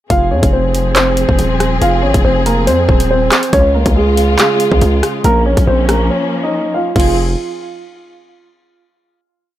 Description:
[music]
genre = hip hop, drill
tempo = 140 BPM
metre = 4/4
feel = half-time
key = F minor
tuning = A4 = 439 Hz
[part]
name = dark baby grand piano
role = melody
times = 0.1-7.2 s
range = Ab3 to F5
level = -15 LUFS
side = right 1 dB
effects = low-pass filter, digital delay
[part]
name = warm studio string section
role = sustained chords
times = 0.1-7.2 s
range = Db3 to Ab4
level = -20 LUFS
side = left 2 dB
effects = none
[part]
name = distorted 808-style bass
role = bass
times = 0.1-7.4 s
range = Eb1 to F2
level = -15 LUFS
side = equal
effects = distortion
[part]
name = drill drum kit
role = drums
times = 0.1-7.1 s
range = crash cymbal, handclaps, hi-hat, kick drum, rim click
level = -15 LUFS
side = equal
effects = none
[sound]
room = light reverb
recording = none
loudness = -10 LUFS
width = side -13 dB against mid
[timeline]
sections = 0.1-7.0 hook; 7.0-8.7 final chord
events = break 6.1-7.0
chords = 0.1 Fm; 3.5 Db; 5.2 Bbm; 7.0 Fm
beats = | 0.10 0.53 0.96 1.39 | 1.82 2.24 2.67 3.10 | 3.53 3.96 4.39 4.82 | 5.24 5.67 6.10 6.53 | 6.96

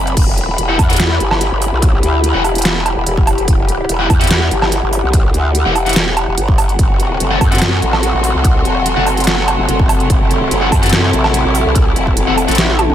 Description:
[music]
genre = heavy wobble dubstep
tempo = 145 BPM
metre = 4/4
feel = half-time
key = E minor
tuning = A4 = 440 Hz
[part]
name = clear studio string section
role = sustained chords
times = 0.0-0.1, 6.8-12.9 s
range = C3 to F#4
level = -21 LUFS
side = equal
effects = sidechain pumping
[part]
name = growl bass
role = bass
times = 0.0-12.9 s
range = E1 to F#2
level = -16 LUFS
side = equal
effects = chorus, overdrive
[part]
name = airy breathy pad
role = texture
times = 0.0-12.9 s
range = C4 to C6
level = -20 LUFS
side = left 1 dB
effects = chorus, sidechain pumping
[part]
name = dubstep drum kit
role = drums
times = 0.1-12.9 s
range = crash cymbal, hi-hat, snare drum, toms, woodblock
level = -17 LUFS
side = right 2 dB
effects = studio reverb
[part]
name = electronic kick drum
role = drums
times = 0.2-12.1 s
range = none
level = -13 LUFS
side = equal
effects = studio reverb
[part]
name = distorted electric guitar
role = stabs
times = 0.7-12.6 s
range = C4 to F#5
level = -20 LUFS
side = left 2 dB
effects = distortion, dub echo
[sound]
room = light reverb, digital ambience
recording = none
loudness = -11 LUFS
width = side -11 dB against mid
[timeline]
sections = 0.2-12.9 A section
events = break 0.0; drop 0.2-12.9; drum fill 12.6-12.9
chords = 0.2 Emadd9; 6.8 F#dim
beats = | 0.17 0.58 1.00 1.41 | 1.82 2.24 2.65 3.06 | 3.48 3.89 4.31 4.72 | 5.13 5.55 5.96 6.38 | 6.79 7.20 7.62 8.03 | 8.45 8.86 9.27 9.69 | 10.10 10.51 10.93 11.34 | 11.76 12.17 12.58

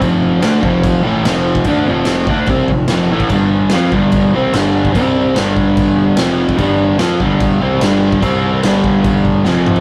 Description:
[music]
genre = garage rock duo or trio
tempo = 146 BPM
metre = 4/4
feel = straight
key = unclear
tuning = A4 = 441 Hz
[part]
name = raw garage guitar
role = riff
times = 0.0-9.8 s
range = F2 to F4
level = -15 LUFS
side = equal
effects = overdrive
[part]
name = growling fingered electric bass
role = bass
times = 0.0-9.8 s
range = F1 to F2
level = -27 LUFS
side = equal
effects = overdrive
[part]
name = raw garage drum kit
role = drums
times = 0.0-9.8 s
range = crash cymbal, kick drum, snare drum, toms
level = -20 LUFS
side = equal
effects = none
[sound]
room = moderate small room reverb, RT60 0.5 s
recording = rough rehearsal-room recording, warm saturation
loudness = -14 LUFS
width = mono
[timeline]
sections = 0.0-9.8 A section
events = drum fill 9.5-9.8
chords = 0.0 F5; 3.3 G5; 5.0 C5; 5.4 G5; 6.2 F5; 6.6 G5; 8.2 C5; 8.6 G5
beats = | 0.02 0.43 0.84 1.25 | 1.66 2.08 2.49 2.90 | 3.31 3.72 4.13 4.54 | 4.95 5.36 5.77 6.18 | 6.59 7.00 7.41 7.82 | 8.23 8.64 9.05 9.46

